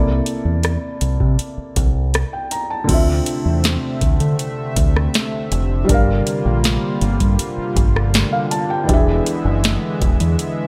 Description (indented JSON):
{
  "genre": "contemporary R&B",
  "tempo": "80 BPM",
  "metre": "4/4",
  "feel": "straight",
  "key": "D minor",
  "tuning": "A4 = 440 Hz",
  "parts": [
    { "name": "felt-muted upright piano", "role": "accompaniment", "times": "0.0-10.7 s", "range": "C3 to Bb5", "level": "-25 LUFS", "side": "equal", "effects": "none" },
    { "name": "deep dub fingered electric bass", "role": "bass", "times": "0.0-10.4 s", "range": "E1 to D3", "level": "-21 LUFS", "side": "equal", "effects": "none" },
    { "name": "booming analog drum machine", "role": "drums", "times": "0.3-10.6 s", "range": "crash cymbal, hi-hat, kick drum, rim click, snare drum", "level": "-21 LUFS", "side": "equal", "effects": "none" },
    { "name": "warm analog pad", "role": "sustained chords", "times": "2.9-10.7 s", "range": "C3 to E5", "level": "-26 LUFS", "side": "equal", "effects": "chorus, sidechain pumping" }
  ],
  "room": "light reverb",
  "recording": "none",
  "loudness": "-18 LUFS",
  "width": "mono",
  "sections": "0.0-2.9 A section; 2.9-10.7 B section",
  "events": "none",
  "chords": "0.0 C13; 2.9 Dm9; 5.9 Gm7; 8.9 E7"
}